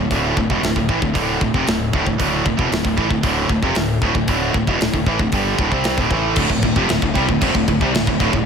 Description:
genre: heavy metal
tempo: 115 BPM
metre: 4/4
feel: straight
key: D minor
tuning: A4 = 442 Hz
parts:
  - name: heavy high-gain guitar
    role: riff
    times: 0.0-8.5 s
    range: D2 to C4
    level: -22 LUFS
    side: left 12 dB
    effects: distortion
  - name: tight distorted guitar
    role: riff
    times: 0.0-8.5 s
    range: D2 to C4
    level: -20 LUFS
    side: right 11 dB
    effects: distortion
  - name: fuzz fingered electric bass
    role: bass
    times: 0.0-8.5 s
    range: D1 to C2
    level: -25 LUFS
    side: equal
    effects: overdrive
  - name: tight metal drum kit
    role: drums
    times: 0.1-8.5 s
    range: crash cymbal, hi-hat, kick drum, snare drum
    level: -21 LUFS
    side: equal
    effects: none
  - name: overdriven electric guitar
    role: riff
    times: 6.4-8.5 s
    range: D2 to G3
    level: -23 LUFS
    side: equal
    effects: none
room: light reverb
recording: none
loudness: -16 LUFS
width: side -6 dB against mid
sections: 0.0-6.4 A section; 6.4-8.5 B section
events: none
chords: 0.0 D5; 6.4 Dm

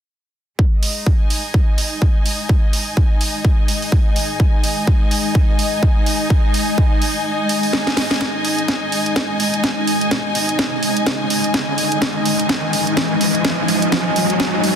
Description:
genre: bass house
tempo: 126 BPM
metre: 4/4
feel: swing 58% on 16ths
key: unclear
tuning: A4 = 440 Hz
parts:
  - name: dark analog pad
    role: sustained chords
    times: 2.0-14.8 s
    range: G#3 to G#5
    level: -23 LUFS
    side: left 2 dB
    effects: chorus, phaser, sidechain pumping
  - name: electronic kick drum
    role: drums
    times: 0.6-14.5 s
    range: none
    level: -16 LUFS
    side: equal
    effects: high-pass filter on kick, high-pass filter on room
  - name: rich symphonic string section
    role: texture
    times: 0.6-14.8 s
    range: G#3 to G#5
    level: -22 LUFS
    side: equal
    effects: sidechain pumping
  - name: house drum kit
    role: drums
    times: 0.8-14.7 s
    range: hi-hat, snare drum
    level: -21 LUFS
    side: right 1 dB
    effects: overdrive
  - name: riser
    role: sound effects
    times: 9.5-14.8 s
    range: none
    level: -23 LUFS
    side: right 1 dB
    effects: none
room: light reverb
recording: dense, heavily limited modern master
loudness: -15 LUFS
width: side -9 dB against mid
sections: 0.6-8.2 A section; 8.2-14.8 B section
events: filter sweep on analog synth pad 0.6-8.2; kick drops out 7.3-8.2; drum fill 7.7-8.2, 8.2-14.8; build-up 8.2-14.8; riser 9.5-14.8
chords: 0.6 G#5

